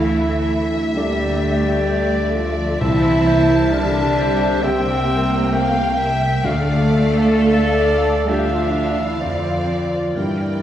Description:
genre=cinematic, emotional film score for orchestra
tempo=65 BPM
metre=4/4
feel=rubato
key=D minor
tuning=A4 = 440 Hz
part: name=warm symphonic violin section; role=melody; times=0.0-10.6 s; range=D5 to A5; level=-30 LUFS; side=left 2 dB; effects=none
part: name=warm symphonic violin section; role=second line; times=0.0-10.6 s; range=D5 to G5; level=-27 LUFS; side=left 2 dB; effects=none
part: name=felt-muted upright piano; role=accompaniment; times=0.0-10.6 s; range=C2 to G5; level=-25 LUFS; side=left 1 dB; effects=none
part: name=warm symphonic viola section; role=accompaniment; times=0.0-10.6 s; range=G3 to D4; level=-26 LUFS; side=right 2 dB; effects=none
part: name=warm French horn section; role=sustained chords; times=0.0-10.6 s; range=C4 to A4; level=-21 LUFS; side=left 1 dB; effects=none
part: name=clear symphonic double bass section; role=bass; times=0.0-10.6 s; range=C2 to G2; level=-23 LUFS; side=right 1 dB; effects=none
part: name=warm symphonic cello section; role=bass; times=0.0-10.6 s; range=C3 to A3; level=-24 LUFS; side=right 2 dB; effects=none
part: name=warm clarinet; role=second line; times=1.0-10.6 s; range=Bb4 to G5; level=-25 LUFS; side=right 1 dB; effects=none
room=wet scoring stage reverb, RT60 1.6 s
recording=heard from further back in the room, vinyl crackle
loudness=-15 LUFS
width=side -11 dB against mid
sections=0.0-10.6 A section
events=none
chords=0.0 Dmadd9; 2.8 C; 6.5 Dmadd9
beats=0.03 0.96 1.88 | 2.81 3.72 4.63 5.54 | 6.45 7.37 8.29 9.21 | 10.17

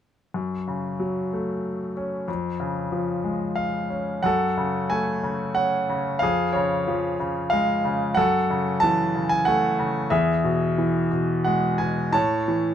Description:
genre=classical, lyrical solo piano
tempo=92 BPM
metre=3/4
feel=rubato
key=unclear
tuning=A4 = 441 Hz
part: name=bright concert grand piano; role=solo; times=0.3-12.7 s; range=E2 to A5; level=-21 LUFS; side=equal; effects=none
room=light reverb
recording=close, detailed microphones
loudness=-21 LUFS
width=side -9 dB against mid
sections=0.3-4.2 A section; 4.2-12.7 B section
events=none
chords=0.3 F#m; 2.3 C#/E#; 4.2 F#m; 6.2 C#/E#; 8.2 F#m7; 10.1 E; 12.1 A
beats=| 0.34 1.01 1.65 | 2.28 2.92 3.58 | 4.25 4.91 5.57 | 6.22 6.87 7.52 | 8.18 8.83 9.47 | 10.11 10.77 11.46 | 12.14

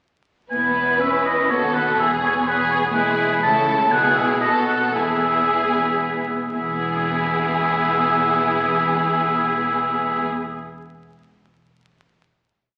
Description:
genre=quick classical-period movement for symphony orchestra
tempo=110-127 BPM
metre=3/4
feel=rubato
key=E major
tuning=A4 = 440 Hz
part: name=rich studio violin section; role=melody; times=0.5-10.2 s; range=G#4 to B4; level=-25 LUFS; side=equal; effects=none
part: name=warm oboe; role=second line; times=0.5-10.2 s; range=B4 to A5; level=-23 LUFS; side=equal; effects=none
part: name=warm studio violin section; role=second line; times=0.5-10.2 s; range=E4 to G#4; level=-32 LUFS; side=equal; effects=none
part: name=dark studio viola section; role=accompaniment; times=0.5-10.2 s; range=G#3 to C#4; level=-29 LUFS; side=equal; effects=none
part: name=warm studio cello section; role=bass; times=0.5-10.2 s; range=D#2 to C#3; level=-33 LUFS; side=equal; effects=none
part: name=warm studio double bass section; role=bass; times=0.5-10.2 s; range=E1 to D#2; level=-38 LUFS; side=equal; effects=none
room=wet recital hall reverb, RT60 1.5 s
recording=very old 78 rpm record, vinyl crackle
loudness=-20 LUFS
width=mono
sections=0.5-6.5 theme; 6.5-9.7 final chord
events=slowing down 2.7-6.5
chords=0.5 E; 1.5 B7/D#; 2.0 E; 3.4 A/C#; 3.9 E/B; 4.9 E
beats=| 0.51 1.00 1.50 | 1.99 2.47 2.95 | 3.43 3.92 4.42 | 4.94 5.47 6.00 | 6.54 7.08 7.60 | 8.13 8.65 9.18

